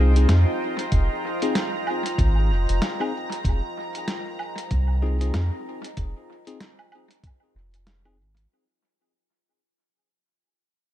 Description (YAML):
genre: ambient dub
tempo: 95 BPM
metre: 4/4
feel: swing 59% on 16ths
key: F minor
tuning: A4 = 440 Hz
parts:
  - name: deep dark ambient pad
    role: sustained chords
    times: 0.0-8.5 s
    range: F4 to Bb5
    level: -30 LUFS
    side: right 1 dB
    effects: chorus, built-in reverb
  - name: bell-like tine electric piano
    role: stabs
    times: 0.0-8.2 s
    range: C4 to Ab4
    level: -30 LUFS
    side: left 4 dB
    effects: dub echo
  - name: soft dub sub bass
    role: bass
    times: 0.0-8.5 s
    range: F1 to F2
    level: -19 LUFS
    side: equal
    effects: none
  - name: lo-fi sampler-style drum kit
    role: drums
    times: 0.2-8.5 s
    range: hi-hat, snare drum, woodblock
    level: -31 LUFS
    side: equal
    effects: dub echo
  - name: electronic kick drum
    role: drums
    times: 0.9-7.4 s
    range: none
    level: -24 LUFS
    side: equal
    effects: none
room: digital ambience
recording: echo-heavy mix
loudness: -21 LUFS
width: side -12 dB against mid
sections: 0.0-8.5 A section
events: fade-out 1.8-8.5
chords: 0.0 Fm7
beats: 0.29 | 0.92 1.55 2.18 2.81 | 3.45 4.08 4.71 5.34 | 5.97 6.60 7.24 7.87